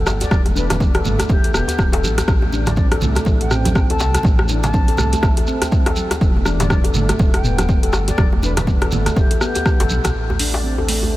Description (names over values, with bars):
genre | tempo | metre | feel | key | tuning
afro house | 122 BPM | 4/4 | swing 59% on 16ths | A minor | A4 = 440 Hz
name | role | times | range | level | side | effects
handpan | arpeggios | 0.0-11.1 s | A3 to A4 | -24 LUFS | left 1 dB | sidechain pumping, low-pass filter, analog delay
dark detuned saw bass | bass | 0.0-11.2 s | D1 to C2 | -21 LUFS | equal | sidechain pumping
afro-pop drum kit | drums | 0.1-11.0 s | hi-hat, rim click, toms | -23 LUFS | equal | none
djembe | percussion | 0.1-11.1 s | none | -27 LUFS | left 1 dB | none
shekere | percussion | 0.1-10.1 s | none | -31 LUFS | right 2 dB | none
bright reedy bansuri | melody | 0.2-10.7 s | G4 to A5 | -28 LUFS | equal | analog delay
congas | percussion | 0.2-10.1 s | none | -28 LUFS | right 3 dB | none
electronic kick drum | drums | 0.3-9.8 s | none | -17 LUFS | equal | overdrive
room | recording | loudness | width
light reverb, small room ambience | none | -14 LUFS | side -16 dB against mid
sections
0.0-10.1 A section; 10.1-11.2 B section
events
none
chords
0.0 Em7; 2.3 Am; 6.2 Em; 10.1 Am